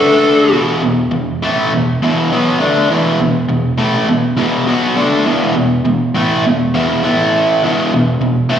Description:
rock; 102 BPM; 4/4; straight; A4 = 437 Hz
fuzz lead guitar; melody; 0.0-0.5 s; A4; -12 LUFS; left 2 dB; distortion, slapback echo, plate reverb
raw garage guitar; riff; 0.0-8.6 s; E2 to F#4; -12 LUFS; equal; overdrive, spring reverb, slapback echo
moderate club reverb, RT60 0.7 s; live gig heard through the venue's PA, recital hall reverb; -12 LUFS; side -9 dB against mid
0.5-8.6 A section
0.0 D; 0.5 E5; 7.0 A5; 7.6 E5

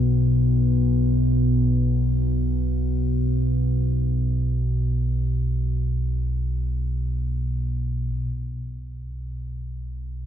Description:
ambient; free time; A4 = 442 Hz
deep rumbling drone; solo; 0.0-10.3 s; B1 to B2; -21 LUFS; equal; built-in reverb
wet cathedral reverb, RT60 5.0 s; -20 LUFS; side -10 dB against mid
0.0-8.1 A section; 8.1-10.3 B section

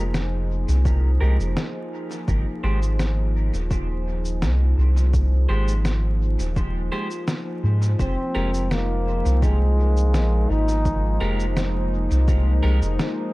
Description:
ambient dub; 84 BPM; 4/4; straight; F minor; A4 = 441 Hz
warm analog pad; sustained chords; 0.0-13.3 s; F3 to C5; -30 LUFS; left 1 dB; wide subtle chorus
electric guitar at the edge of break-up; stabs; 0.0-12.8 s; Ab3 to C5; -34 LUFS; right 1 dB; low-pass filter, dub echo
soft dub sub bass; bass; 0.0-13.0 s; Eb1 to Ab2; -20 LUFS; equal
electronic snare drum and shaker; drums; 0.1-13.1 s; -30 LUFS; equal; dub echo
electronic kick drum; drums; 0.9-12.4 s; -24 LUFS; equal
warm trombone; melody; 8.0-11.6 s; Ab3 to Eb4; -28 LUFS; equal; dub echo
little or no reverb; echo-heavy mix, vinyl crackle; -19 LUFS; side -20 dB against mid
0.0-13.3 A section
0.0 Fm11; 2.3 Ab; 8.0 Fm11

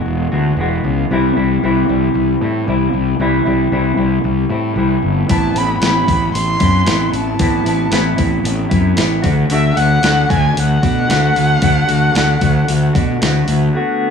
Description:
indie rock; 114 BPM; 4/4; straight; A4 = 439 Hz
electric guitar through a small old amp; riff; 0.0-14.1 s; A2 to F#4; -18 LUFS; equal
fuzz fingered electric bass; bass; 0.1-13.7 s; E1 to B2; -16 LUFS; left 1 dB; overdrive
dark erhu; melody; 5.3-13.2 s; E5 to C6; -18 LUFS; equal; slapback echo
crisp 8-bit digital drum machine; drums; 5.3-13.6 s; hi-hat, kick drum, snare drum; -19 LUFS; equal
little or no reverb; studio ambience; -12 LUFS; side -6 dB against mid
0.0-13.7 A section
0.0 Eadd9; 1.1 C; 5.3 Amadd9; 9.2 D6

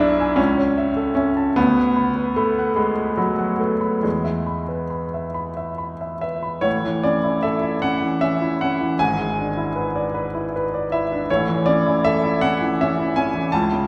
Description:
classical, romantic character piece for solo piano; 45-55 BPM (dotted quarters); 6/8; rubato; A major; A4 = 441 Hz
clear grand piano; solo; 0.0-13.9 s; G#1 to B5; -21 LUFS; equal
wet recital hall reverb, RT60 1.6 s; recorded in a church or concert hall; -21 LUFS; mono
0.0-6.7 A section; 6.7-13.9 B section
0.4 A/C#; 1.6 Bm/D; 4.0 E; 6.7 A; 9.0 E7/G#; 11.3 A

